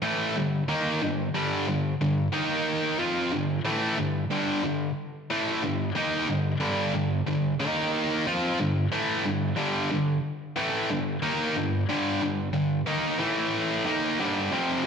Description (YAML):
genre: rock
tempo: 91 BPM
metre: 4/4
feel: straight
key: G minor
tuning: A4 = 440 Hz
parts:
  - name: high-gain distorted guitar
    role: solo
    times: 0.0-14.9 s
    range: F2 to F4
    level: -24 LUFS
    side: equal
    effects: distortion
room: wet lush hall reverb, RT60 1.7 s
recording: big arena sound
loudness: -24 LUFS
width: side -6 dB against mid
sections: 0.0-14.9 A section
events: none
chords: 0.0 Gm; 2.3 Eb5; 3.0 G5; 7.6 Eb5; 8.3 Gm; 13.2 A5; 13.9 Gm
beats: 0.35 1.01 | 1.67 2.33 2.99 3.65 | 4.30 4.96 5.62 6.28 | 6.94 7.59 8.25 8.91 | 9.57 10.23 10.89 11.55 | 12.21 12.87 13.53 14.20 | 14.86